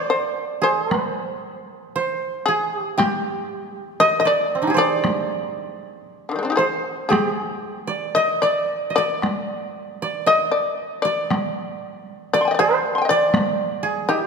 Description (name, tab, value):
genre	japanese traditional, Japanese chamber music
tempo	58 BPM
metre	2/4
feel	rubato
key	unclear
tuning	A4 = 444 Hz
part	shamisen	melody	0.0-14.3 s	D3 to C6	-21 LUFS	left 4 dB	none
part	koto	second line	0.0-14.3 s	C4 to Eb5	-23 LUFS	right 5 dB	none
part	taiko ensemble	percussion	0.9-13.6 s	none	-24 LUFS	left 1 dB	none
room	wet concert hall reverb, RT60 2.5 s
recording	none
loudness	-19 LUFS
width	side -5 dB against mid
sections	0.9-14.3 A section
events	none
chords	none